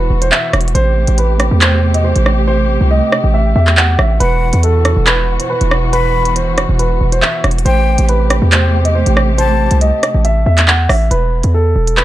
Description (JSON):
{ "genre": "hip hop, drill", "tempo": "139 BPM", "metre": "4/4", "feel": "half-time", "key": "E harmonic minor", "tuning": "A4 = 440 Hz", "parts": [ { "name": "dark baby grand piano", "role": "melody", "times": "0.0-12.0 s", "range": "A4 to F#5", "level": "-18 LUFS", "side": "right 1 dB", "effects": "none" }, { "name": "muted studio string section", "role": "sustained chords", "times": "0.0-11.1 s", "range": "B2 to G4", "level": "-20 LUFS", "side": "right 1 dB", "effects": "none" }, { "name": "hard-hitting 808-style bass", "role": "bass", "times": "0.0-12.0 s", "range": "E1 to E2", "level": "-12 LUFS", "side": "equal", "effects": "none" }, { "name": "drill drum kit", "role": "drums", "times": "0.2-12.0 s", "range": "handclaps, hi-hat, rim click", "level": "-15 LUFS", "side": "right 1 dB", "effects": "vintage 12-bit sampler grit" }, { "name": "breathy jazz flute", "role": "second line", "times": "4.2-9.8 s", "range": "F#5 to B5", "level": "-22 LUFS", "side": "left 8 dB", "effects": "ping-pong delay" } ], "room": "small room reverb", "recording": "dark, warm production", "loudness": "-10 LUFS", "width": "side -14 dB against mid", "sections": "0.0-11.1 A section", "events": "hi-hats muted 2.5-4.2", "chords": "0.0 Esus2; 0.8 Am7; 4.2 Esus2; 7.7 Am7; 11.1 E5" }